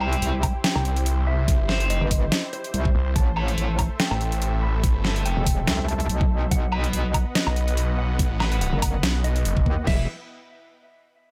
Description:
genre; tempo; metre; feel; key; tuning
heavy wobble dubstep; 143 BPM; 4/4; swing 54% on 16ths, half-time; E harmonic minor; A4 = 441 Hz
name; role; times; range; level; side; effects
mellow electric guitar; melody; 0.0-10.0 s; C5 to B5; -36 LUFS; equal; dub echo
supersaw pad; sustained chords; 0.0-10.1 s; A3 to F#5; -38 LUFS; equal; sidechain pumping, low-pass filter
tight distorted guitar; stabs; 0.0-10.0 s; A3 to E5; -34 LUFS; equal; distortion, dub echo
metallic wobble bass; bass; 0.0-10.1 s; E1 to D#2; -27 LUFS; equal; distortion, chorus, overdrive
dubstep drum kit; drums; 0.0-9.5 s; hi-hat, snare drum, woodblock; -28 LUFS; equal; overdrive
dubstep drum kit; drums; 0.4-10.0 s; crash cymbal, kick drum, snare drum; -25 LUFS; equal; overdrive
snarling distorted saw bass; bass; 0.8-9.6 s; F#1 to C2; -26 LUFS; equal; distortion, overdrive
room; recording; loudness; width
digital ambience; none; -23 LUFS; mono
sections
0.0-9.9 A section; 9.9-11.3 B section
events
drop 0.0-9.9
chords
0.0 C; 3.2 Am; 6.5 B; 9.9 Em

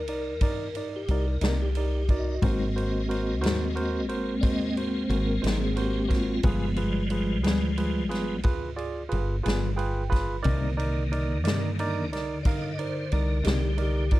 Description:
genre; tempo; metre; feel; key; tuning
slow blues; 60 BPM (dotted quarters); 12/8; straight; C minor; A4 = 440 Hz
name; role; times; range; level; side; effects
tonewheel organ; sustained chords; 0.0-14.2 s; D3 to Eb5; -29 LUFS; left 1 dB; slow rotary speaker, chorus vibrato
woody fretless electric bass; bass; 0.0-14.2 s; G1 to G2; -29 LUFS; equal; none
barky tine electric piano; accompaniment; 0.1-14.2 s; Eb4 to B5; -33 LUFS; right 3 dB; medium stereo tremolo
swinging big-band drum kit; drums; 0.1-14.2 s; kick drum, ride cymbal, snare drum; -30 LUFS; equal; none
clean electric guitar; accompaniment; 1.4-13.7 s; Ab2 to Ab4; -32 LUFS; left 4 dB; tremolo
room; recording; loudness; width
light reverb; dark, warm production; -24 LUFS; side -16 dB against mid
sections
0.0-14.2 A section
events
tonewheel organ solo 0.0-14.2; tine electric piano fill 9.4-10.4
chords
0.0 Cm7; 2.4 Ab7; 6.4 G7b9; 10.4 Cm7

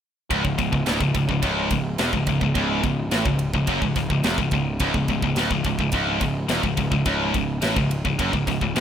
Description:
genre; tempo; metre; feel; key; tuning
heavy metal; 106 BPM; 4/4; straight; C# phrygian; A4 = 442 Hz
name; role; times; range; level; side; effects
heavy high-gain guitar; riff; 0.3-8.8 s; C#2 to A2; -24 LUFS; left 8 dB; distortion
tight distorted guitar; riff; 0.3-8.8 s; C#2 to A2; -26 LUFS; right 9 dB; distortion
fuzz picked electric bass; bass; 0.3-8.8 s; C#1 to A1; -26 LUFS; equal; overdrive
tight metal drum kit; drums; 0.3-8.8 s; kick drum, ride cymbal, snare drum; -27 LUFS; equal; none
room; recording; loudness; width
small room ambience; rough home demo mix; -20 LUFS; side -9 dB against mid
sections
0.3-8.8 A section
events
none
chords
0.3 C#m

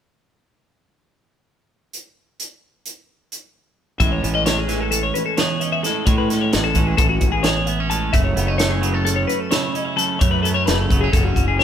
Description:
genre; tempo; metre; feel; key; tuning
math rock and midwest emo; 261 BPM (eighths); 9/8; straight; A major; A4 = 437 Hz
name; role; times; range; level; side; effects
crisp fusion drum kit; drums; 1.9-11.6 s; hi-hat, kick drum, snare drum; -21 LUFS; equal; none
clean electric guitar; accompaniment; 4.0-11.6 s; E2 to G#4; -24 LUFS; right 7 dB; none
twelve-string electric guitar; arpeggios; 4.0-11.6 s; F#4 to A5; -22 LUFS; left 5 dB; vibrato effect
fuzz fingered electric bass; bass; 4.0-11.6 s; F#1 to A2; -22 LUFS; equal; overdrive
room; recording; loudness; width
moderate stone room reverb, RT60 1.4 s; band playing live in one room; -16 LUFS; side -9 dB against mid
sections
1.9-4.0 A section; 4.0-11.6 B section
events
none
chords
1.9 N.C.; 4.0 Amaj7; 8.1 F#m7

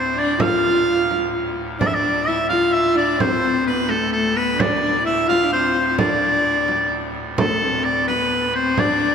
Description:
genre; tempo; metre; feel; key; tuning
medieval dance; 86 BPM (dotted quarters); 6/8; straight; D dorian; A4 = 440 Hz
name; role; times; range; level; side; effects
bright shawm; melody; 0.0-9.1 s; A4 to F5; -19 LUFS; right 1 dB; none
warm viola da gamba; second line; 0.0-9.1 s; A3 to F4; -21 LUFS; left 2 dB; none
pipe organ, clarinet reed; drone; 0.0-9.1 s; D2 to A2; -30 LUFS; equal; none
frame drum; percussion; 0.4-9.0 s; none; -26 LUFS; right 3 dB; none
room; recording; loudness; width
wet church reverb, RT60 3.5 s; none; -17 LUFS; side -7 dB against mid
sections
0.0-7.4 A section; 7.4-9.1 B section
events
none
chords
none

